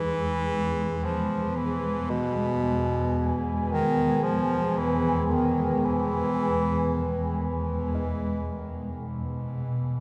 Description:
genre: dark ambient drone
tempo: 56 BPM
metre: 4/4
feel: straight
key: E major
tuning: A4 = 439 Hz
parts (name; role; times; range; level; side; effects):
- clear bass clarinet; melody; 0.0-7.5 s; B2 to F3; -30 LUFS; equal; delay
- deep dark ambient pad; sustained chords; 1.1-8.0 s; B3 to G#5; -32 LUFS; equal; chorus, built-in reverb
- gamelan-type bronze metallophone; arpeggios; 0.0-3.2 s; G#3 to G#4; -44 LUFS; equal; none
- swarming drone; drone; 0.0-10.0 s; E2 to G#3; -32 LUFS; equal; built-in reverb
- quartz singing bowl; texture; 0.0-10.0 s; B3 to D#5; -49 LUFS; equal; none
room: wet cathedral reverb, RT60 6.5 s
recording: none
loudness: -27 LUFS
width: mono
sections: 0.0-8.0 A section; 8.0-10.0 B section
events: none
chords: 0.0 E; 8.0 B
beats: 0.48 1.55 2.62 | 3.69 4.76 5.83 6.91 | 7.98 9.05

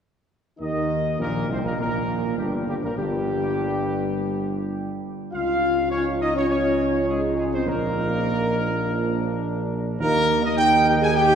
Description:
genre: classical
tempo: 103 BPM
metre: 4/4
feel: straight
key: Eb major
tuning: A4 = 439 Hz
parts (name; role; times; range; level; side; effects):
- warm trumpet section; melody; 0.6-11.3 s; G4 to Ab5; -25 LUFS; equal; none
- clear trombone section; sustained chords; 0.6-11.3 s; G2 to Eb4; -32 LUFS; right 2 dB; none
- warm French horn section; sustained chords; 0.6-11.3 s; G3 to Ab4; -26 LUFS; left 2 dB; none
- mellow tuba; bass; 0.6-11.3 s; G1 to Eb2; -25 LUFS; right 2 dB; none
room: wet cathedral reverb, RT60 4.5 s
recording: heard from further back in the room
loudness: -21 LUFS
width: side -8 dB against mid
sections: 0.6-11.3 A section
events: none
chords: 0.6 Eb; 5.3 Dbadd9; 7.7 Bb; 10.0 Eb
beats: | 0.60 1.20 1.79 2.38 | 2.97 3.56 4.14 4.73 | 5.32 5.91 6.49 7.07 | 7.66 8.24 8.82 9.41 | 9.99 10.57 11.15

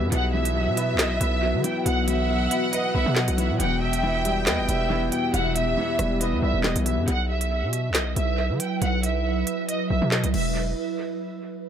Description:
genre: hip hop, drill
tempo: 138 BPM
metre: 4/4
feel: half-time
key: unclear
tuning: A4 = 440 Hz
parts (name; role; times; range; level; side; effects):
- dark studio violin section; melody; 0.0-10.5 s; D#5 to G5; -28 LUFS; right 3 dB; low-pass filter, analog delay
- dark baby grand piano; accompaniment; 0.0-7.1 s; E2 to B4; -27 LUFS; left 2 dB; low-pass filter, analog delay
- ethereal airy pad; sustained chords; 0.0-10.5 s; F#3 to E5; -31 LUFS; right 1 dB; ensemble chorus, built-in reverb
- distorted 808-style bass; bass; 0.0-10.7 s; D#1 to D#3; -25 LUFS; equal; distortion
- warm symphonic violin section; second line; 0.1-6.6 s; E5 to G5; -30 LUFS; left 1 dB; analog delay
- drill drum kit; drums; 0.1-10.4 s; crash cymbal, handclaps, hi-hat, rim click, snare drum; -28 LUFS; equal; analog delay
room: light reverb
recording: echo-heavy mix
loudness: -21 LUFS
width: side -8 dB against mid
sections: 0.0-7.1 A section; 7.1-10.6 B section; 10.6-11.7 C section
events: none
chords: 0.1 Bsus4; 3.6 Em; 7.1 Bsus4; 10.3 Em; 10.6 N.C.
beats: | 0.12 0.56 0.99 1.43 | 1.86 2.29 2.73 3.16 | 3.60 4.03 4.47 4.90 | 5.34 5.77 6.21 6.64 | 7.08 7.51 7.95 8.38 | 8.82 9.25 9.69 10.12 | 10.55

